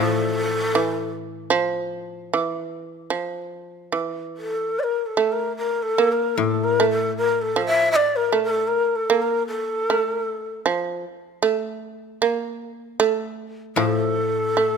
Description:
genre	japanese traditional, Japanese chamber music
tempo	76 BPM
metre	4/4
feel	rubato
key	unclear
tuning	A4 = 440 Hz
part	breathy long shakuhachi	melody	0.0-14.8 s	A4 to E5	-21 LUFS	left 2 dB	none
part	shamisen	second line	0.0-14.8 s	E3 to Bb3	-24 LUFS	right 6 dB	none
part	koto	accompaniment	0.0-8.7, 13.8-14.8 s	A2 to E3	-26 LUFS	left 7 dB	none
room	light reverb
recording	close, detailed microphones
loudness	-20 LUFS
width	side -6 dB against mid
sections	0.0-4.8 A section; 4.8-14.8 B section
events	none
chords	none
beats	0.73 | 1.52 2.31 3.12 3.95 | 4.79 5.59 6.39 7.18 | 7.95 8.72 9.49 10.27 | 11.04 11.81 12.59 13.38 | 14.18

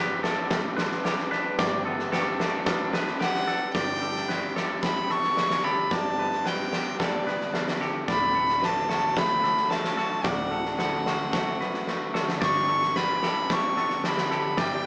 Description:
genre	post-rock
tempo	111 BPM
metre	4/4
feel	straight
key	unclear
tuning	A4 = 442 Hz
part	glassy FM pad	sustained chords	0.2-14.9 s	D3 to D6	-37 LUFS	equal	ensemble chorus, built-in reverb
part	clean electric guitar	arpeggios	0.0-14.9 s	D2 to G4	-34 LUFS	equal	none
part	twangy electric guitar	arpeggios	0.0-14.9 s	A4 to D5	-32 LUFS	equal	none
part	fingered electric bass	bass	0.0-14.9 s	D1 to G1	-44 LUFS	equal	none
part	big rock drum kit	drums	0.2-14.7 s	kick drum, snare drum	-27 LUFS	equal	none
part	clear violin	melody	3.2-14.9 s	D5 to C#6	-26 LUFS	equal	none
room	moderate studio reverb, RT60 0.6 s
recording	band playing live in one room, small speaker sound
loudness	-23 LUFS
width	side -32 dB against mid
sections	0.0-3.8 A section; 3.8-14.9 B section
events	drum fill 11.9-12.4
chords	0.0 Gmaj7; 3.8 G; 8.1 D; 12.4 G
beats	0.51 1.05 | 1.59 2.13 2.67 3.21 | 3.75 4.29 4.83 5.37 | 5.92 6.46 7.00 7.54 | 8.08 8.62 9.17 9.71 | 10.25 10.79 11.33 11.88 | 12.42 12.96 13.50 14.04 | 14.58

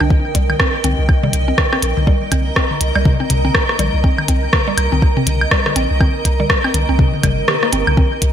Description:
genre	minimal techno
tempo	122 BPM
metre	4/4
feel	swing 60% on 16ths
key	C minor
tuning	A4 = 441 Hz
part	mallet-like synth pluck	riff	0.0-8.0 s	G3 to G4	-24 LUFS	right 1 dB	chorus, sidechain pumping, ping-pong delay
part	punchy sub bass	bass	0.0-8.3 s	G1 to C2	-18 LUFS	equal	sidechain pumping
part	electronic toms and woodblock	percussion	0.0-8.1 s	none	-22 LUFS	left 3 dB	gated reverb, digital delay
part	granular cloud pad	texture	0.0-8.3 s	Bb4 to Bb5	-22 LUFS	right 1 dB	built-in reverb, wide subtle chorus, sidechain pumping
part	electronic kick drum	drums	0.1-8.3 s	none	-16 LUFS	equal	none
part	minimal click drum kit	drums	0.3-8.3 s	hi-hat, rim click	-19 LUFS	equal	gated reverb
room	moderate lush hall reverb, RT60 2.1 s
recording	bright 1980s-style digital production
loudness	-13 LUFS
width	side -9 dB against mid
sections	0.0-8.3 A section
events	kick drops out 7.5-8.0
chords	0.0 Cm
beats	| 0.10 0.60 1.09 1.58 | 2.07 2.56 3.06 3.55 | 4.04 4.53 5.02 5.51 | 6.01 6.50 6.99 7.48 | 7.97

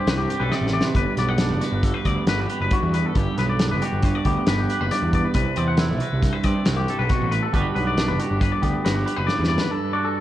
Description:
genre	math rock and midwest emo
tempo	137 BPM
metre	5/4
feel	straight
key	G major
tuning	A4 = 441 Hz
part	twangy electric guitar	accompaniment	0.0-10.2 s	G2 to B4	-26 LUFS	right 4 dB	lush chorus
part	twangy electric guitar	arpeggios	0.0-10.2 s	F#4 to F#5	-26 LUFS	left 4 dB	analog delay
part	fuzz picked electric bass	bass	0.1-9.6 s	F#1 to G2	-24 LUFS	equal	overdrive, tube saturation
part	loose indie drum kit	drums	0.1-9.7 s	hi-hat, kick drum, snare drum	-24 LUFS	equal	none
room	moderate recital hall reverb, RT60 1.6 s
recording	worn, warbling old tape, cassette tape, warbly pitch drift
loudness	-19 LUFS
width	side -13 dB against mid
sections	0.0-9.7 A section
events	drum fill 0.5-1.0, 9.3-9.7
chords	0.0 Cmaj9#11; 1.0 Gmaj7; 5.3 Cmaj9#11; 7.5 Gmaj7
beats	0.07 0.51 | 0.95 1.39 1.83 2.27 2.71 | 3.15 3.59 4.03 4.47 4.91 | 5.35 5.78 6.22 6.66 7.10 | 7.53 7.97 8.41 8.84 9.28 | 9.71 10.15

